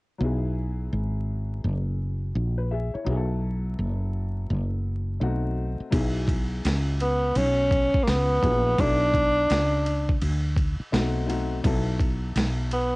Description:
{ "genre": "hip hop, jazz-hop", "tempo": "84 BPM", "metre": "4/4", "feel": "swing 64% on 16ths", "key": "B dorian", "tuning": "A4 = 441 Hz", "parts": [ { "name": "warm upright piano", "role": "accompaniment", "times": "0.2-12.7 s", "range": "F#3 to E5", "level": "-34 LUFS", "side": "left 4 dB", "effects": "cassette tape" }, { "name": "woody fretless electric bass", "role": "bass", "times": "0.2-13.0 s", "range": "F#1 to D2", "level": "-26 LUFS", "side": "equal", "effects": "transformer saturation" }, { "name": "boom bap sampler-style drum kit", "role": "drums", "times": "5.9-12.9 s", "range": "hi-hat, kick drum, ride cymbal, snare drum", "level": "-28 LUFS", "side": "equal", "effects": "overdrive, cassette tape" }, { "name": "breathy tenor saxophone", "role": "melody", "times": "7.0-13.0 s", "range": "A#3 to D4", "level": "-22 LUFS", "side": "equal", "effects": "cassette tape" } ], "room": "little or no reverb", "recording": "home recording on cassette, vinyl crackle, nothing above 10.9 kHz", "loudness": "-23 LUFS", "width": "side -24 dB against mid", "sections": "0.2-5.9 A section; 5.9-13.0 B section", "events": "none", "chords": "0.2 F#9sus4; 3.1 B7sus4; 5.2 B7b9; 5.9 C#m7/B; 8.8 Bm11; 10.9 B7b9; 11.6 Esus4/B", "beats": "| 0.21 0.92 1.64 2.35 | 3.07 3.78 4.50 5.21 | 5.92 6.64 7.35 8.07 | 8.78 9.49 10.21 10.92 | 11.64 12.35" }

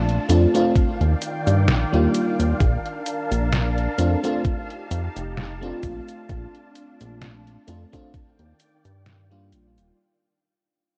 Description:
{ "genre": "vaporwave", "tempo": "65 BPM", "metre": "4/4", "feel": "swing 55% on 16ths", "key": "Bb major", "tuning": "A4 = 439 Hz", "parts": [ { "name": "FM electric piano with soft pad layer", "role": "accompaniment", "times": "0.0-10.0 s", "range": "G3 to F4", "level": "-26 LUFS", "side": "equal", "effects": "lush chorus, tape echo" }, { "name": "soft string machine", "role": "sustained chords", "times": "0.0-10.0 s", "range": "Eb3 to A5", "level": "-32 LUFS", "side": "equal", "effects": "ensemble chorus" }, { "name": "chorused synth bass", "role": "bass", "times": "0.0-9.9 s", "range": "Eb1 to G2", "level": "-24 LUFS", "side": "equal", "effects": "none" }, { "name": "detuned 8-bit digital drum machine", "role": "drums", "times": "0.1-9.9 s", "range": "cabasa, hi-hat, snare drum", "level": "-30 LUFS", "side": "equal", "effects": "vintage 12-bit sampler grit, small room ambience" }, { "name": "electronic kick drum", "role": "drums", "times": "0.8-8.3 s", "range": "none", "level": "-24 LUFS", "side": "equal", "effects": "vintage 12-bit sampler grit, small room ambience" } ], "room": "light reverb", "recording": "worn, warbling old tape, cassette tape, warbly pitch drift", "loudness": "-22 LUFS", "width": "mono", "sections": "0.0-10.0 A section", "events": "fade-out 0.0-10.0", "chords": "0.0 Bbmaj7; 0.8 Ebmaj9; 2.6 Bbmaj7; 4.4 F9; 5.8 Bbmaj7; 8.1 Ebmaj9", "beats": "0.76 1.68 | 2.60 3.52 4.45 5.37 | 6.29 7.22 8.14 9.06" }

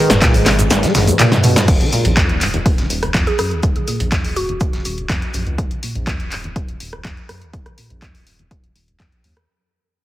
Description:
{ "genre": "acid house", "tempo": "123 BPM", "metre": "4/4", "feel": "straight", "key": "Eb minor", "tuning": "A4 = 440 Hz", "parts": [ { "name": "warbly tape-like pad", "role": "sustained chords", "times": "0.0-1.6 s", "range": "Ab3 to Cb5", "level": "-23 LUFS", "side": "right 1 dB", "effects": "chorus, built-in reverb, sidechain pumping" }, { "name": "deep acid bass", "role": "riff", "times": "0.0-9.5 s", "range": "Eb1 to Ab3", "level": "-20 LUFS", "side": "equal", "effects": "wide subtle chorus, tape echo" }, { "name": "round analog bass", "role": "bass", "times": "0.1-9.3 s", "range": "Eb1 to Eb2", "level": "-24 LUFS", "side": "equal", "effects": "sidechain pumping" }, { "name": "dusty soul sampler-style drum kit", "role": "drums", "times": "0.1-5.5 s", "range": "hi-hat, shaker, snare drum", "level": "-27 LUFS", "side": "equal", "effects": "sidechain pumping on perc, high-pass filter on perc, sidechain pumping on hats, high-pass filter on hats, high-pass filter on snare" }, { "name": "punchy analog drum machine", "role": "drums", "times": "0.1-9.5 s", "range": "cabasa, crash cymbal, handclaps, hi-hat, rim click, snare drum, toms", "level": "-18 LUFS", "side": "equal", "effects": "none" }, { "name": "electronic kick drum", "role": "drums", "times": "0.2-9.1 s", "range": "none", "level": "-18 LUFS", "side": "equal", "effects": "overdrive" }, { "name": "mallet-like synth pluck", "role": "melody", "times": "3.3-4.7 s", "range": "Gb4 to Ab4", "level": "-25 LUFS", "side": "right 2 dB", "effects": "chorus, tape echo" } ], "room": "moderate plate reverb, RT60 2.3 s", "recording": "heavily compressed radio sound", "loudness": "-14 LUFS", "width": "side -14 dB against mid", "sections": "0.0-1.7 A section; 1.7-9.5 B section", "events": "drop 0.0-1.7; drum fill 0.9-1.7; fade-out 1.7-9.5; filter sweep on acid bass 1.7-9.5", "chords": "0.0 Abm; 1.7 Eb5", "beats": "0.22 0.71 1.19 | 1.68 2.17 2.66 3.15 | 3.63 4.12 4.61 5.10 | 5.58 6.07 6.56 7.05 | 7.54 8.02 8.51 9.00" }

